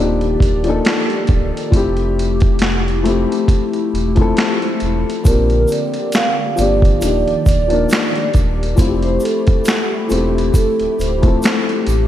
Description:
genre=lo-fi hip hop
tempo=68 BPM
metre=4/4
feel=swing 56% on 16ths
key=F major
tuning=A4 = 440 Hz
part: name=dark upright piano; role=accompaniment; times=0.0-12.1 s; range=F3 to Bb4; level=-19 LUFS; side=left 4 dB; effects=cassette tape, low-pass filter
part: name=hollow soft pad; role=sustained chords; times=0.0-12.1 s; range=D3 to D5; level=-24 LUFS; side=left 2 dB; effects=ensemble chorus, low-pass filter
part: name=sub bass with octave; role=bass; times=0.0-12.1 s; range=D1 to Bb1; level=-19 LUFS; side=equal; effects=none
part: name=boom bap sampler-style drum kit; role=drums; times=0.2-12.1 s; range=finger snaps, hi-hat, kick drum, snare drum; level=-16 LUFS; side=equal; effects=none
part: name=tube shaker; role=percussion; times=5.2-12.1 s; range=none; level=-36 LUFS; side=left 1 dB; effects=none
part: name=vibraphone with soft mallets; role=melody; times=5.3-11.4 s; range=A4 to F5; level=-20 LUFS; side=right 4 dB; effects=low-pass filter, analog delay
room=moderate lush hall reverb, RT60 2.6 s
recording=dreamy mix soaked in reverb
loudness=-13 LUFS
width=side -12 dB against mid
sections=0.0-5.2 A section; 5.2-12.1 B section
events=none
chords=0.0 Ebmaj7; 1.7 Fmaj9; 5.2 Bb69; 7.0 Ebmaj7; 8.8 Fmaj9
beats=0.84 | 1.72 2.60 3.48 4.37 | 5.25 6.13 7.01 7.89 | 8.78 9.66 10.54 11.42

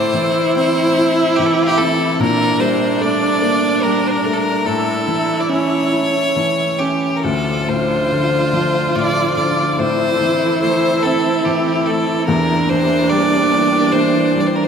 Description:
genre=celtic folk, Celtic slow air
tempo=72 BPM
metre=3/4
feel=rubato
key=unclear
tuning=A4 = 441 Hz
part: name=bright fiddle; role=melody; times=0.0-14.7 s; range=F4 to D5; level=-18 LUFS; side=left 1 dB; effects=none
part: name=rich viola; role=second line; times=0.0-14.7 s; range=D4 to F4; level=-18 LUFS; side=right 4 dB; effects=none
part: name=felt-muted upright piano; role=accompaniment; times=0.0-14.7 s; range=D2 to E4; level=-20 LUFS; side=left 2 dB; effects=none
part: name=warm studio string section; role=sustained chords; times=7.2-14.7 s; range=E3 to C5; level=-25 LUFS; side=equal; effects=none
room=wet cathedral reverb, RT60 6.2 s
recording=in a vast, echoing space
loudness=-14 LUFS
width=side -7 dB against mid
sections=0.0-14.7 A section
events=none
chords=0.0 Am; 2.2 Gmadd9/Bb; 4.6 A; 7.2 Dm7; 9.8 Am; 12.3 Edim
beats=0.55 1.36 | 2.18 3.00 3.82 | 4.65 5.49 6.35 | 7.23 8.11 8.96 | 9.79 10.62 11.46 | 12.29 13.10 13.93

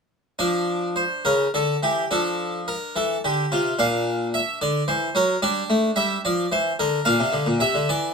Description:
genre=classical, baroque-style suite movement for harpsichord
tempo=69-76 BPM (dotted quarters)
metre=6/8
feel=rubato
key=D minor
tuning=A4 = 440 Hz
part: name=harpsichord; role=solo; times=0.4-8.1 s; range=Bb2 to F5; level=-20 LUFS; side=equal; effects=none
room=moderate studio reverb, RT60 0.7 s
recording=none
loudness=-20 LUFS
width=side -5 dB against mid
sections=0.4-8.1 A section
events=none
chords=0.4 Dm/F; 1.2 C#dim7; 2.1 Dm/F; 3.8 Bb; 4.6 D; 5.4 G5; 7.1 Bbadd9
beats=| 0.38 1.25 | 2.10 2.96 | 3.79 4.62 | 5.42 6.24 | 7.06 7.88

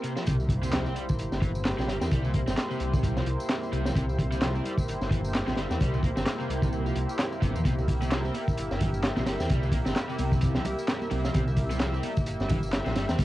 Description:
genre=breakbeat, breaks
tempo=130 BPM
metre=4/4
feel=swing 58% on 16ths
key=unclear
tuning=A4 = 436 Hz
part: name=lush unison pad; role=sustained chords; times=0.0-13.2 s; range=Bb3 to E5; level=-34 LUFS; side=equal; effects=chorus, vintage 12-bit sampler grit, sidechain pumping, cassette tape
part: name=overdriven electric guitar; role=riff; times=0.0-13.2 s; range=Bb2 to C4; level=-36 LUFS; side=equal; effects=cassette tape, tape echo
part: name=crunchy breakbeat drum kit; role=drums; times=0.0-13.2 s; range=hi-hat, kick drum, snare drum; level=-28 LUFS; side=equal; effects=high-pass filter on kick, cassette tape, high-pass filter on hats, high-pass filter on snare, high-pass filter on room
part: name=swell and sub drop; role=sound effects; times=0.0-2.1 s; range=none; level=-38 LUFS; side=equal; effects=none
part: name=punchy analog drum machine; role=drums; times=0.2-13.2 s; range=handclaps, ride cymbal, tambourine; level=-40 LUFS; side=equal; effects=low-pass filter on perc, cassette tape, low-pass filter on snare, low-pass filter on cymbals
part: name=detuned saw bass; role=bass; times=0.3-13.2 s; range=G1 to E2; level=-30 LUFS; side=equal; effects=none
part: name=congas and bongos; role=percussion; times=7.7-13.2 s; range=none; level=-38 LUFS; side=right 2 dB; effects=none
room=light reverb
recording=home recording on cassette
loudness=-25 LUFS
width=side -16 dB against mid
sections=0.3-13.2 A section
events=swell 0.0; drop 0.3-13.2; impact 0.3-2.1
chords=0.3 C7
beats=| 0.27 0.73 1.19 1.65 | 2.11 2.57 3.04 3.50 | 3.96 4.42 4.88 5.34 | 5.80 6.27 6.73 7.19 | 7.65 8.11 8.57 9.04 | 9.50 9.96 10.42 10.88 | 11.34 11.80 12.27 12.73 | 13.19

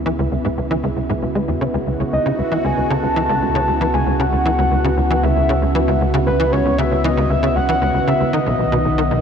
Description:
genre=ambient, sequencer-driven space music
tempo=116 BPM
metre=4/4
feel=straight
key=C# minor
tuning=A4 = 440 Hz
part: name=sweeping resonant pad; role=sustained chords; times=0.0-9.2 s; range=C#3 to G#4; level=-21 LUFS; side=right 1 dB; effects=chorus
part: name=warm sub bass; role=bass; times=0.0-9.2 s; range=B1 to C#2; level=-23 LUFS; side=equal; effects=none
part: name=tight sequencer bass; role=riff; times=0.1-9.2 s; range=B1 to G#3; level=-20 LUFS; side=equal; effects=ensemble chorus, tape echo
part: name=soft octave-layered synth lead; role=melody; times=2.1-9.2 s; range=B4 to A5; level=-20 LUFS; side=left 1 dB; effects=chorus, tape echo
room=wet huge ambient reverb, RT60 8.0 s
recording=none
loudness=-15 LUFS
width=side -7 dB against mid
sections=0.0-9.2 A section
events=fade-in on analog synth pad 0.0-9.2; fade-in on sub bass 0.0-9.2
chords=0.0 C#m7; 8.3 B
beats=| 0.06 0.58 1.09 1.61 | 2.13 2.65 3.16 3.68 | 4.20 4.71 5.23 5.75 | 6.27 6.78 7.30 7.82 | 8.34 8.85

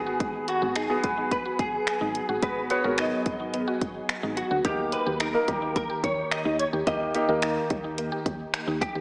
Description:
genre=dance-pop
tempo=108 BPM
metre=4/4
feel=straight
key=unclear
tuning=A4 = 443 Hz
part: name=direct-recorded clean electric guitar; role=melody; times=0.0-9.0 s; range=F#4 to D#5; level=-32 LUFS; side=equal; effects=ensemble chorus, diffuse ambient delay
part: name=clear concert grand piano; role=accompaniment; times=0.0-8.2 s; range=A#3 to B4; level=-32 LUFS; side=equal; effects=sidechain pumping
part: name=glassy FM pad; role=sustained chords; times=0.2-9.0 s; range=D#3 to G#4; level=-38 LUFS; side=equal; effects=ensemble chorus, built-in reverb, sidechain pumping
part: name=solid FM bass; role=bass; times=0.0-9.0 s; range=G#1 to D#2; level=-38 LUFS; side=equal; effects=sidechain pumping
part: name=mallet-like synth pluck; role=arpeggios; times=0.1-9.0 s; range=G3 to G4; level=-37 LUFS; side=equal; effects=chorus, sidechain pumping, diffuse ambient delay
part: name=pop drum kit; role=drums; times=0.2-8.9 s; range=finger snaps, hi-hat, kick drum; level=-33 LUFS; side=equal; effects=none
room=wet lush hall reverb, RT60 2.2 s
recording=dreamy mix soaked in reverb, small speaker sound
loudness=-27 LUFS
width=mono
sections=0.0-9.0 A section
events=none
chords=0.0 G#m7; 4.6 D#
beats=| 0.20 0.76 1.31 1.87 | 2.43 2.98 3.54 4.09 | 4.65 5.20 5.76 6.32 | 6.87 7.43 7.98 8.54

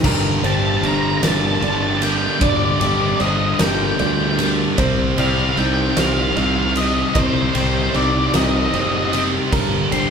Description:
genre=post-rock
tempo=51 BPM (dotted quarters)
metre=6/8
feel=straight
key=G minor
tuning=A4 = 440 Hz
part: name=electric guitar through a small old amp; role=arpeggios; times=0.0-10.1 s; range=G2 to G4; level=-28 LUFS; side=equal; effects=warbly pitch drift
part: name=felt-muted upright piano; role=arpeggios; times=0.0-10.1 s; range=Bb4 to Eb5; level=-29 LUFS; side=right 4 dB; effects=none
part: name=thick fuzz guitar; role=riff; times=0.0-10.1 s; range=G2 to C4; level=-20 LUFS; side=equal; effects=distortion
part: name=modern bright fingered electric bass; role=bass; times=0.0-10.1 s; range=F#1 to D2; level=-23 LUFS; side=equal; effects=none
part: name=oversized low-tuned drum kit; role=drums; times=0.0-10.1 s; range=crash cymbal, kick drum, ride cymbal, snare drum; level=-21 LUFS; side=left 1 dB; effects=none
part: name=octave-fuzz lead guitar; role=melody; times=0.5-10.1 s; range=C5 to C6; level=-22 LUFS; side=left 1 dB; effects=distortion
room=moderate large studio reverb, RT60 1.1 s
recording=band playing live in one room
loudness=-15 LUFS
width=side -6 dB against mid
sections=0.0-10.1 A section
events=none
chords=0.0 Gm; 4.8 Cm; 9.5 Gm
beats=| 0.05 1.23 | 2.42 3.60 | 4.79 5.97 | 7.16 8.34 | 9.53

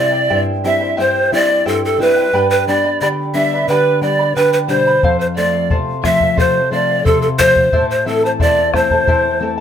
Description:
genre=andean folk, Andean ensemble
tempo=89 BPM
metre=2/4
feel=straight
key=unclear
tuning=A4 = 440 Hz
part: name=breathy large pan pipes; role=melody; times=0.0-9.5 s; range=A4 to E5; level=-15 LUFS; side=left 1 dB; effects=none
part: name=breathy bright pan flute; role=second line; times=0.0-9.4 s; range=A4 to E5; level=-20 LUFS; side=right 6 dB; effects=none
part: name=charango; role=accompaniment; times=0.0-9.6 s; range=E4 to B5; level=-22 LUFS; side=equal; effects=none
part: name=nylon-string guitar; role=accompaniment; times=0.0-9.6 s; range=E2 to E4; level=-20 LUFS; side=left 3 dB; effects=none
part: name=bombo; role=percussion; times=5.0-9.2 s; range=none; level=-19 LUFS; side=left 2 dB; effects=none
room=moderate studio ambience, RT60 0.5 s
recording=none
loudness=-12 LUFS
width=side -9 dB against mid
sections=0.0-9.6 A section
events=none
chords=0.0 C; 2.3 G; 5.0 F; 7.7 Am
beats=0.31 | 0.99 1.67 | 2.34 3.02 | 3.69 4.37 | 5.04 5.72 | 6.39 7.06 | 7.73 8.41 | 9.08

